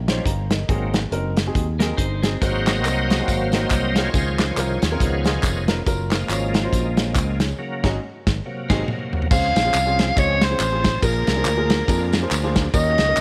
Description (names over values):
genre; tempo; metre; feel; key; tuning
uptempo gospel; 139 BPM; 4/4; swing 58% on 8ths; Db major; A4 = 440 Hz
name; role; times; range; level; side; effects
modern bright fingered electric bass; bass; 0.0-13.2 s; F1 to F2; -26 LUFS; equal; none
dark grand piano; accompaniment; 0.1-13.2 s; Ab2 to Bb5; -31 LUFS; equal; none
bright tonewheel organ; sustained chords; 0.1-13.2 s; C3 to F5; -29 LUFS; equal; slow rotary speaker, overdrive, chorus vibrato
natural country drum kit; drums; 0.1-13.2 s; crash cymbal, hi-hat, kick drum, ride cymbal, snare drum, toms; -24 LUFS; equal; none
clean electric guitar; second line; 1.8-2.8, 8.7-8.8 s; C4 to C5; -33 LUFS; equal; spring reverb
tambourine and handclaps; percussion; 2.4-13.2 s; none; -33 LUFS; equal; none
warm soprano saxophone; melody; 9.3-13.2 s; Bb4 to F5; -23 LUFS; equal; none
room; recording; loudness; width
light reverb, studio ambience; none; -21 LUFS; mono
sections
0.0-9.3 A section; 9.3-13.2 B section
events
tonewheel organ solo 0.0-9.3; band accent 7.6-9.3; drum fill 8.4-9.3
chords
0.0 Eb7; 0.7 Ab7; 4.1 Dbmaj7; 5.0 Db7; 5.9 Gbmaj7; 7.6 Ab7sus4; 8.4 Ab7; 9.3 Dbmaj7; 11.0 Bb7